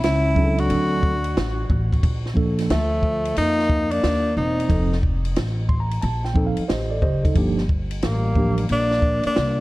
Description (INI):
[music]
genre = hip hop, jazz-hop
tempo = 90 BPM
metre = 4/4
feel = swing 65% on 16ths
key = unclear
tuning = A4 = 440 Hz
[part]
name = breathy tenor saxophone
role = melody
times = 0.0-9.6 s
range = A3 to F#4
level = -23 LUFS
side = equal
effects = tape echo
[part]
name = breathy trombone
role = second line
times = 0.0-9.6 s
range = F3 to D4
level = -29 LUFS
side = left 3 dB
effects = tape echo
[part]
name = upright bass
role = bass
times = 0.0-9.6 s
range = E1 to F2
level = -24 LUFS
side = equal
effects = none
[part]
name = compact cocktail drum kit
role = drums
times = 0.0-9.6 s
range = hi-hat, kick drum, ride cymbal, snare drum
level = -24 LUFS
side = equal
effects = none
[part]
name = mellow tine electric piano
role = accompaniment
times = 0.3-8.6 s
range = F3 to C6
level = -24 LUFS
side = right 2 dB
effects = fast stereo tremolo
[sound]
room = light reverb, small room ambience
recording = dark, warm production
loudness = -18 LUFS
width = side -19 dB against mid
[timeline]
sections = 0.0-9.6 A section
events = tine electric piano fill 5.4-7.4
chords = 0.0 A; 0.7 D7; 2.0 Bbmaj7; 4.7 F7; 7.4 Gm7